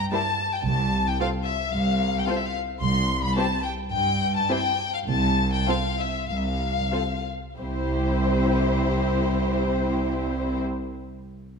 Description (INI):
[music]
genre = quick classical-period movement for symphony orchestra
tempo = 89-112 BPM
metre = 4/4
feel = straight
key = C major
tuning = A4 = 439 Hz
[part]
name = rich chamber violin section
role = melody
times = 0.0-10.6 s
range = C5 to C6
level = -27 LUFS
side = left 4 dB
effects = none
[part]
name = rich chamber cello section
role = bass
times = 0.0-10.6 s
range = C2 to G2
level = -27 LUFS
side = right 1 dB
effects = none
[part]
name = warm symphonic violin section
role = second line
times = 0.1-10.6 s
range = G4 to C5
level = -32 LUFS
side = left 2 dB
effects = none
[part]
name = warm chamber viola section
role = accompaniment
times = 0.1-10.6 s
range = G3 to F4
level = -29 LUFS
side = equal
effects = none
[part]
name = rich chamber double bass section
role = bass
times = 0.7-10.6 s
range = C2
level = -29 LUFS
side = right 2 dB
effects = none
[sound]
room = moderate scoring stage reverb, RT60 1.6 s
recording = dark, warm production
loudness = -22 LUFS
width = side -5 dB against mid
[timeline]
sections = 0.0-7.6 A section; 7.6-11.6 B section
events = slowing down 1.7-7.6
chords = 0.0 C (rootless); 0.7 F/C; 2.8 C5; 5.1 F/C; 7.6 C